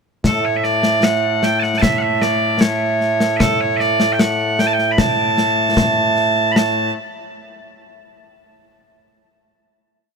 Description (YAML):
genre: scottish traditional, Scottish pipe music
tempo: 76 BPM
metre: 2/4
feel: straight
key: A mixolydian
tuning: A4 = 440 Hz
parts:
  - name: concert snare drum and concert bass drum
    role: drums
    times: 0.2-6.7 s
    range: none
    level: -19 LUFS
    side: left 2 dB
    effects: none
  - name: loud bright bagpipes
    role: melody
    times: 0.3-6.9 s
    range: A2 to B5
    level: -16 LUFS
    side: right 1 dB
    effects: none
room: light reverb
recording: none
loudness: -14 LUFS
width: side -5 dB against mid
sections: 0.2-6.6 A section; 6.6-8.1 final note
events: none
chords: none